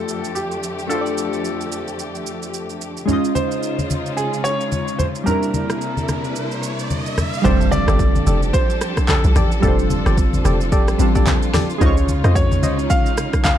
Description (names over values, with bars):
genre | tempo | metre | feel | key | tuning
amapiano | 110 BPM | 4/4 | swing 58% on 16ths | F major | A4 = 440 Hz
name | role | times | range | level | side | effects
warm baby grand piano | melody | 0.0-13.6 s | G4 to F5 | -25 LUFS | equal | tape echo
glassy digital keys | accompaniment | 0.0-13.6 s | G3 to Eb5 | -24 LUFS | right 1 dB | chorus
dark studio string section | sustained chords | 0.0-13.6 s | F2 to A4 | -28 LUFS | left 1 dB | sidechain pumping
deep house drum kit | drums | 0.1-13.6 s | handclaps, kick drum, rim click, shaker, snare drum | -20 LUFS | equal | overdrive
congas | percussion | 3.1-13.6 s | none | -24 LUFS | left 1 dB | none
riser and impact | sound effects | 5.2-9.6 s | none | -28 LUFS | equal | none
percussive organ stab | stabs | 7.4-12.8 s | F4 to Eb5 | -26 LUFS | left 2 dB | chorus, tape echo
hollow log drum bass | bass | 7.5-12.9 s | F1 to F2 | -18 LUFS | equal | none
room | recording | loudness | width
digital ambience | dark, warm production | -16 LUFS | side -11 dB against mid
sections
0.0-7.4 A section; 7.4-13.6 B section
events
riser 5.2-7.4; drop 7.4-13.6; impact 7.4-9.6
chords
0.0 F69; 3.1 Dbmaj9; 5.3 C9; 7.4 F69; 11.8 Dbmaj9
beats
0.36 | 0.90 1.45 2.00 2.54 | 3.09 3.63 4.18 4.72 | 5.27 5.81 6.36 6.90 | 7.45 8.00 8.54 9.09 | 9.63 10.18 10.72 11.27 | 11.81 12.36 12.90 13.45